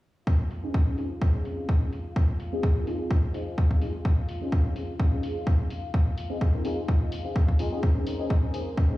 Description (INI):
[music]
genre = filtered disco house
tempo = 127 BPM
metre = 4/4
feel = swing 55% on 16ths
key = unclear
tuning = A4 = 441 Hz
[part]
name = clear chamber string section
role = sustained chords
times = 0.3-9.0 s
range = Bb3 to F5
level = -42 LUFS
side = left 2 dB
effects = sidechain pumping, low-pass filter
[part]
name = electronic kick drum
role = drums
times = 0.3-8.9 s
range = none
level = -23 LUFS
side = equal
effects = overdrive, small room ambience
[part]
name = electronic hi-hat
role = drums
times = 0.5-8.6 s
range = none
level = -48 LUFS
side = left 2 dB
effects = overdrive, sidechain pumping on hats, low-pass filter on hats, small room ambience
[part]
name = funky polysynth comp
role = accompaniment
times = 0.6-9.0 s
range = C4 to Bb4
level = -33 LUFS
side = left 1 dB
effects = chorus, phaser, sidechain pumping, low-pass filter
[sound]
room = little or no reverb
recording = played on a big sound system in a bare room, stone room reverb, small room ambience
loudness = -24 LUFS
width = side -17 dB against mid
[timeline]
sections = 0.3-9.0 A section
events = filter sweep on drum 0.3-9.0; filter sweep 0.3-9.0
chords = 0.3 Dbmaj9/C; 1.9 Fm7; 4.1 Dbmaj9/C; 5.7 Fm7; 7.8 Bbm11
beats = | 0.27 0.74 1.22 1.69 | 2.16 2.63 3.11 3.58 | 4.05 4.52 5.00 5.47 | 5.94 6.41 6.89 7.36 | 7.83 8.30 8.78